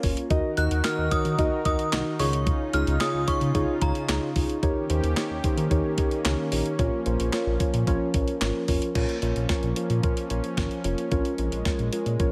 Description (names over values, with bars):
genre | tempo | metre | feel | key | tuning
synth-pop | 111 BPM | 4/4 | straight | Bb minor | A4 = 440 Hz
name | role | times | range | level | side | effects
muted felt-like synth keys | accompaniment | 0.0-12.3 s | Db4 to Eb5 | -30 LUFS | equal | chorus
warm analog pad | sustained chords | 0.0-12.3 s | Db3 to Bb4 | -34 LUFS | equal | chorus
chorused synth bass | bass | 0.0-12.3 s | F1 to Eb3 | -30 LUFS | equal | none
clean 12-bit digital drum machine | drums | 0.0-12.3 s | crash cymbal, handclaps, hi-hat, kick drum, snare drum | -30 LUFS | equal | none
synth chime | second line | 0.6-3.9 s | Bb5 to Gb6 | -33 LUFS | equal | ensemble chorus, tremolo, tape echo
room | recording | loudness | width
light reverb, digital ambience | none | -25 LUFS | mono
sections
0.0-9.0 A section; 9.0-12.3 B section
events
none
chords
0.3 Ebm; 2.2 Dbadd9; 4.6 Eb7; 6.8 Bbm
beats
| 0.30 0.84 1.39 1.93 | 2.47 3.01 3.55 4.09 | 4.63 5.17 5.71 6.25 | 6.79 7.33 7.87 8.41 | 8.95 9.49 10.03 10.57 | 11.12 11.66 12.20